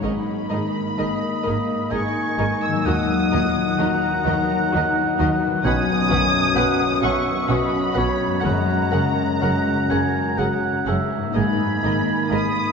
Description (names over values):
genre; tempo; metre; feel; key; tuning
cinematic, emotional film score for orchestra; 64 BPM; 3/4; uneven beats, rubato; G# minor; A4 = 440 Hz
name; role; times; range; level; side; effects
muted symphonic violin section; melody; 0.0-12.7 s; A#5 to E6; -27 LUFS; left 1 dB; none
muted symphonic violin section; second line; 0.0-12.4 s; A#4 to F#5; -30 LUFS; left 2 dB; none
muted symphonic viola section; accompaniment; 0.0-12.4 s; A#3 to G#4; -31 LUFS; right 1 dB; none
warm concert grand piano; accompaniment; 0.0-12.7 s; B1 to F#4; -26 LUFS; left 1 dB; none
warm French horn section; sustained chords; 0.0-12.7 s; F#3 to D#4; -27 LUFS; left 2 dB; none
concert harp; arpeggios; 0.0-12.7 s; F#2 to F#4; -28 LUFS; left 5 dB; none
muted studio cello section; bass; 0.0-12.4 s; F#2 to D#3; -30 LUFS; right 3 dB; none
muted studio double bass section; bass; 0.0-12.4 s; F#1 to D#2; -29 LUFS; right 4 dB; none
warm oboe; second line; 1.0-12.7 s; C#5 to B5; -25 LUFS; equal; none
room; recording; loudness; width
wet church reverb, RT60 3.1 s; nothing above 7.7 kHz, faint mains hum; -18 LUFS; side -5 dB against mid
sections
0.0-12.7 A section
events
none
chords
0.0 G#madd9; 2.9 D#m; 5.6 Bsus2; 8.4 F#add9; 11.3 G#madd9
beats
| 0.04 1.00 1.93 | 2.86 3.79 4.73 | 5.65 6.56 7.49 | 8.44 9.42 10.38 | 11.35 12.31